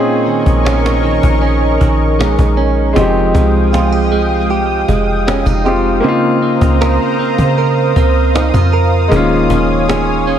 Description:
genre	contemporary R&B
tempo	78 BPM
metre	4/4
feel	straight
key	F minor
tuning	A4 = 438 Hz
part	clear grand piano	accompaniment	0.0-10.4 s	Ab3 to Ab4	-17 LUFS	left 3 dB	none
part	lush unison pad	sustained chords	0.0-10.4 s	Ab3 to Eb6	-18 LUFS	equal	chorus
part	direct-recorded clean electric guitar	arpeggios	0.0-10.4 s	Bb2 to Bb4	-16 LUFS	right 7 dB	ping-pong delay
part	cajon	drums	0.3-10.4 s	none	-20 LUFS	equal	none
part	soft 808-style bass	bass	0.5-10.4 s	Eb1 to Db3	-15 LUFS	equal	none
room	light reverb, small room ambience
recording	none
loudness	-10 LUFS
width	side -9 dB against mid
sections	0.0-10.4 A section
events	none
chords	0.0 Bbm11; 3.0 Fm9; 6.0 Dbmaj13; 9.1 Eb9sus4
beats	0.65 1.42 2.19 | 2.96 3.73 4.50 5.27 | 6.04 6.81 7.58 8.35 | 9.12 9.88

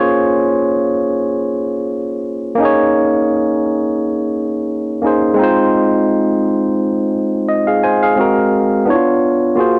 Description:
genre	R&B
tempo	86 BPM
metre	4/4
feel	swing 54% on 16ths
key	Bb minor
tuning	A4 = 441 Hz
part	barky tine electric piano	solo	0.0-9.8 s	Ab3 to Ab5	-15 LUFS	equal	none
room	light reverb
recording	home recording on cassette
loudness	-15 LUFS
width	mono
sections	0.0-8.2 A section; 8.2-9.8 B section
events	none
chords	0.0 Bbm9; 2.6 Eb7sus4; 5.4 Fm7; 8.2 Ab9; 8.9 Db7b9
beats	0.50 1.20 1.90 | 2.59 3.29 3.99 4.69 | 5.38 6.08 6.78 7.48 | 8.18 8.87 9.57

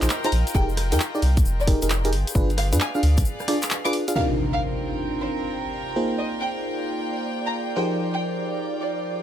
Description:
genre	UK garage, two-step garage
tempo	133 BPM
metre	4/4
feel	swing 66% on 16ths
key	C minor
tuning	A4 = 440 Hz
part	FM electric piano	stabs	0.0-9.2 s	C3 to F5	-26 LUFS	equal	chorus, tape echo
part	soft dub sub bass	bass	0.0-3.2 s	F1 to G2	-21 LUFS	equal	none
part	punchy analog drum machine	drums	0.0-9.1 s	handclaps, hi-hat, rim click	-28 LUFS	equal	low-pass filter on hats, low-pass filter on snare, low-pass filter on room
part	egg shaker	percussion	0.0-4.1 s	none	-34 LUFS	left 5 dB	none
part	clear studio string section	texture	0.0-9.2 s	C4 to G5	-32 LUFS	equal	sidechain pumping
part	dark studio violin section	melody	0.2-8.9 s	C5 to D6	-30 LUFS	equal	dub echo
part	electronic kick drum	drums	0.5-3.2 s	none	-22 LUFS	equal	none
part	soft string machine	sustained chords	5.7-9.2 s	D5	-35 LUFS	right 2 dB	ensemble chorus, sidechain pumping
part	impact	sound effects	4.2-6.0 s	none	-30 LUFS	equal	none
room	moderate small room reverb, RT60 0.5 s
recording	none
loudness	-21 LUFS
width	side -10 dB against mid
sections	0.0-4.2 A section; 4.2-9.2 B section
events	break 3.3-4.2; impact 4.2-6.0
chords	0.0 Bbsus4; 0.5 Fm11; 2.1 G7b9; 4.2 Cm11; 6.0 Bb9sus4; 7.8 Fm11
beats	0.10 | 0.55 1.00 1.45 1.90 | 2.35 2.80 3.25 3.71 | 4.16 4.61 5.06 5.51 | 5.96 6.41 6.86 7.31 | 7.77 8.22 8.67 9.12

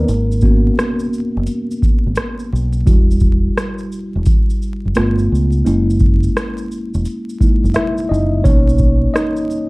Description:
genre	lo-fi hip hop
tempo	86 BPM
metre	4/4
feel	swing 66% on 16ths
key	unclear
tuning	A4 = 440 Hz
part	mellow tine electric piano	accompaniment	0.0-9.7 s	G3 to E5	-19 LUFS	equal	medium stereo tremolo, cassette tape, plate reverb
part	deep dub fingered electric bass	bass	0.0-9.1 s	E1 to C#2	-16 LUFS	equal	none
part	booming analog drum machine	drums	0.1-9.7 s	hi-hat, kick drum, rim click, shaker	-14 LUFS	equal	none
room	light reverb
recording	dark, warm production, vinyl crackle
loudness	-13 LUFS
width	side -24 dB against mid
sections	0.0-9.7 A section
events	tine electric piano solo 0.0-9.7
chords	0.1 G#m11; 2.9 Emadd9; 5.0 G9; 5.7 F#13; 8.5 Bmaj9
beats	| 0.08 0.78 1.48 2.17 | 2.87 3.57 4.27 4.96 | 5.66 6.36 7.06 7.76 | 8.45 9.15

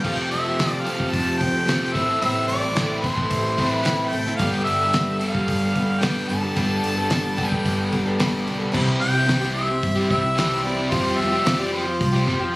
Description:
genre	folk rock and heartland rock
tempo	110 BPM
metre	4/4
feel	straight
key	C major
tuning	A4 = 438 Hz
part	clear harmonica	melody	0.0-12.6 s	C5 to A5	-25 LUFS	equal	none
part	picked acoustic archtop guitar	accompaniment	0.0-12.5 s	G2 to A4	-26 LUFS	left 1 dB	none
part	crunchy overdriven guitar	riff	0.0-12.6 s	F2 to G4	-25 LUFS	equal	none
part	upright bass	bass	0.0-12.6 s	G1 to G2	-28 LUFS	equal	none
part	damped 70s drum kit	drums	0.0-12.4 s	crash cymbal, hi-hat, kick drum, snare drum	-27 LUFS	equal	none
part	mellow tonewheel organ	sustained chords	0.1-12.6 s	F4 to C6	-34 LUFS	right 1 dB	none
room	light reverb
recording	recorded on a phone in the room, studio reverb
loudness	-19 LUFS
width	side -21 dB against mid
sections	0.0-8.7 A section; 8.7-12.6 B section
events	none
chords	0.0 Fadd9; 1.9 Am; 4.4 Gadd9; 8.7 C; 10.9 Fsus2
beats	| 0.04 0.59 1.13 1.68 | 2.22 2.76 3.31 3.85 | 4.39 4.94 5.48 6.03 | 6.57 7.11 7.66 8.20 | 8.74 9.29 9.83 10.37 | 10.91 11.46 12.00 12.54

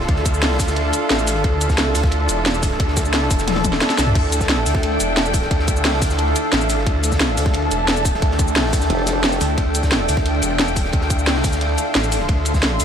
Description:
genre	dark technical drum and bass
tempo	177 BPM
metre	4/4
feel	straight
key	D minor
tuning	A4 = 437 Hz
part	deep dark ambient pad	sustained chords	0.0-12.8 s	D4 to A5	-23 LUFS	equal	chorus, built-in reverb, sidechain pumping
part	snarling distorted saw bass	bass	0.0-12.8 s	E1 to D2	-22 LUFS	equal	distortion, overdrive, sidechain pumping
part	crunchy breakbeat drum kit	drums	0.0-12.8 s	hi-hat, ride cymbal, snare drum	-30 LUFS	equal	none
part	muted studio string section	texture	0.0-12.8 s	D4 to C6	-25 LUFS	right 1 dB	sidechain pumping
part	drum and bass drum kit	drums	0.1-12.8 s	cabasa, crash cymbal, hi-hat, snare drum, toms	-20 LUFS	equal	studio reverb
part	electronic kick drum	drums	0.1-12.6 s	none	-20 LUFS	equal	overdrive, studio reverb
part	formant-sweep wobble bass	bass	8.9-9.4 s	F1	-22 LUFS	equal	chorus
room	light reverb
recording	none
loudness	-16 LUFS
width	side -8 dB against mid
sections	0.0-12.8 A section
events	drum fill 3.5-4.2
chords	0.0 Dmadd9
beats	| 0.09 0.42 0.76 1.10 | 1.44 1.78 2.12 2.46 | 2.80 3.14 3.48 3.81 | 4.15 4.49 4.83 5.17 | 5.51 5.85 6.19 6.53 | 6.87 7.21 7.54 7.88 | 8.22 8.56 8.90 9.24 | 9.58 9.92 10.26 10.60 | 10.93 11.27 11.61 11.95 | 12.29 12.63

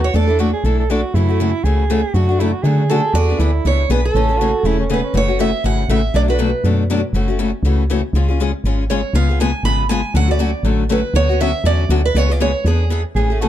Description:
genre	acoustic string swing (jazz manouche)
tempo	240 BPM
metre	4/4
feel	swing 56% on 8ths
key	A major, F# minor from 5.1 s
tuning	A4 = 438 Hz
part	picked steel-string acoustic guitar	melody	0.0-0.5, 2.9-6.6, 8.9-13.5 s	G#4 to B5	-20 LUFS	right 4 dB	none
part	breathy soprano saxophone	second line	0.0-5.1, 13.2-13.5 s	B3 to A4	-23 LUFS	right 6 dB	none
part	woody FM bass	bass	0.0-13.5 s	E1 to D3	-17 LUFS	equal	none
part	picked steel-string acoustic guitar	accompaniment	0.1-13.5 s	B2 to A4	-20 LUFS	left 4 dB	none
room	light reverb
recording	dark, warm production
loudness	-14 LUFS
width	side -12 dB against mid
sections	0.0-5.1 A section; 5.1-13.2 B section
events	none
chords	0.1 E9sus4; 1.1 F#m7; 2.1 Dmaj7/F#; 3.1 E7; 4.1 Amaj7; 5.1 F#m7; 6.1 Bm7; 7.1 F#m7; 8.1 C#; 9.1 C#7; 10.1 Dmaj7; 11.1 Bmadd9/D; 12.2 C#7; 12.7 E7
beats	| 0.14 0.39 0.64 0.89 | 1.14 1.39 1.64 1.89 | 2.15 2.40 2.65 2.90 | 3.15 3.40 3.65 3.90 | 4.15 4.40 4.65 4.90 | 5.15 5.40 5.65 5.89 | 6.14 6.39 6.64 6.89 | 7.14 7.39 7.64 7.89 | 8.14 8.39 8.64 8.89 | 9.14 9.39 9.64 9.90 | 10.15 10.40 10.65 10.90 | 11.15 11.40 11.65 11.90 | 12.15 12.40 12.65 12.90 | 13.15 13.40

